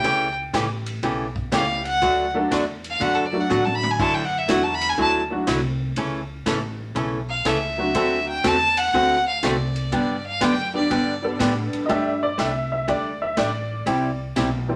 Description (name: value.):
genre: country, western swing.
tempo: 122 BPM.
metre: 4/4.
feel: swing 67% on 8ths.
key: G major.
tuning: A4 = 440 Hz.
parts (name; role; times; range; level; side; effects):
clear fiddle; second line; 0.0-11.4 s; A4 to B5; -24 LUFS; equal; none.
archtop guitar, miked and amplified; accompaniment; 0.0-14.5 s; C3 to A4; -26 LUFS; equal; none.
honky-tonk upright piano; accompaniment; 0.0-14.8 s; D3 to E5; -28 LUFS; equal; none.
upright bass; bass; 0.0-14.8 s; A1 to A2; -33 LUFS; equal; none.
swinging big-band drum kit; drums; 0.0-14.5 s; crash cymbal, hi-hat, kick drum, ride cymbal, snare drum, toms; -34 LUFS; equal; none.
room: wet small room reverb, RT60 0.5 s.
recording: none.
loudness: -22 LUFS.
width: mono.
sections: 0.0-11.9 A section; 11.9-14.8 A section.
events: fiddle solo 0.0-11.9; drum fill 3.5-4.0; honky-tonk piano solo 11.9-14.8.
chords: 0.0 A7; 2.0 D; 4.0 Dadd9; 6.0 A; 7.9 D7; 9.9 G; 11.9 Gsus2; 13.9 C.